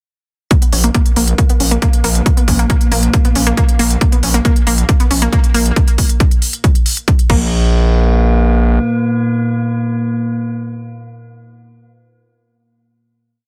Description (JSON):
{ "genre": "driving peak-time techno", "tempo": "137 BPM", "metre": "4/4", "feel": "straight", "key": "unclear", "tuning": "A4 = 440 Hz", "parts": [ { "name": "analog pluck", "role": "riff", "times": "0.5-7.7 s", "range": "Bb3 to Db4", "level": "-22 LUFS", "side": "equal", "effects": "chorus, tube saturation, sidechain pumping, delay" }, { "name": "metallic inharmonic drone", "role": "drone", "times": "1.3-11.3 s", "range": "Bb2 to Bb3", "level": "-22 LUFS", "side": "equal", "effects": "chorus, built-in reverb, sidechain pumping" }, { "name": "electronic kick drum", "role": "drums", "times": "0.5-7.4 s", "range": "none", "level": "-14 LUFS", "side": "equal", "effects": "overdrive" }, { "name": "techno drum kit", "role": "drums", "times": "0.5-7.4 s", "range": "crash cymbal, hi-hat", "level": "-22 LUFS", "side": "equal", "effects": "overdrive" }, { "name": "gritty driven synth bass", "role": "bass", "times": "0.7-8.8 s", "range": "Bb1", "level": "-16 LUFS", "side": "equal", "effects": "distortion, sidechain pumping" } ], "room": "light reverb", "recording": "dense, heavily limited modern master", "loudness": "-13 LUFS", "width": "mono", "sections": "0.5-7.5 groove; 7.5-11.0 final hit", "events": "filter sweep on synth arpeggio sound 0.5-5.8", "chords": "none" }